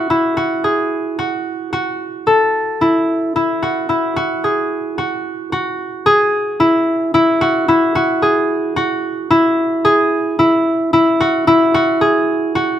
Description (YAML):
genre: contemporary instrumental, contemporary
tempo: 222 BPM (eighths)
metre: 7/8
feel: straight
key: unclear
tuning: A4 = 441 Hz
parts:
  - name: concert harp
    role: solo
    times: 0.0-12.8 s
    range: E4 to A4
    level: -13 LUFS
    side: equal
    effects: none
room: light reverb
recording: close, detailed microphones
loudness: -13 LUFS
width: side -10 dB against mid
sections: 0.0-6.1 A section; 6.1-12.8 B section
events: none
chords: 0.4 F#sus2; 2.3 A5; 4.2 F#sus2; 6.1 Eadd9